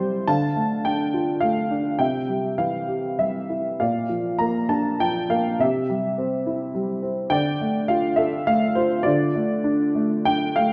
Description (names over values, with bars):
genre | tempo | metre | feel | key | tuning
classical, lyrical solo piano | 93-108 BPM | 3/4 | rubato | D minor | A4 = 439 Hz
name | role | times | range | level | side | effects
warm upright piano | solo | 0.0-10.7 s | Bb2 to Bb5 | -23 LUFS | equal | none
room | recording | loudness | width
wet recital hall reverb, RT60 1.7 s | recorded in a church or concert hall, nothing above 10.5 kHz | -23 LUFS | mono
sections
0.0-10.7 A section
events
none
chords
0.3 Dm; 2.0 C; 3.8 Bb; 5.6 C; 7.3 Dm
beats
| 0.29 0.86 1.43 | 2.00 2.60 3.20 | 3.82 4.42 5.02 | 5.61 6.20 6.76 | 7.33 7.90 8.49 | 9.07 9.65 10.28